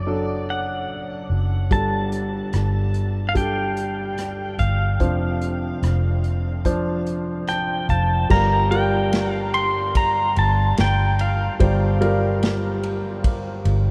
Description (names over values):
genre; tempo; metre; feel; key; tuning
acoustic folk-pop ballad; 73 BPM; 4/4; straight; G minor; A4 = 439 Hz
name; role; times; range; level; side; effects
pedal steel guitar; melody; 0.0-12.4 s; D5 to C6; -27 LUFS; equal; none
warm grand piano; accompaniment; 0.0-13.9 s; F1 to A5; -27 LUFS; equal; none
vintage muted fingered electric bass; bass; 0.0-13.9 s; F1 to D2; -24 LUFS; equal; none
loose indie drum kit; drums; 1.7-13.8 s; crash cymbal, hi-hat, kick drum, ride cymbal, rim click, snare drum; -26 LUFS; equal; none
room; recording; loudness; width
moderate huge ambient reverb, RT60 8.4 s; in a vast, echoing space; -21 LUFS; mono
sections
0.0-8.3 A section; 8.3-13.9 B section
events
none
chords
0.0 D/F#; 1.7 Gsus2; 5.0 Dm7/F; 8.3 Gm7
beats
0.07 0.89 | 1.71 2.54 3.36 4.18 | 5.01 5.83 6.66 7.48 | 8.31 9.13 9.96 10.78 | 11.60 12.42 13.24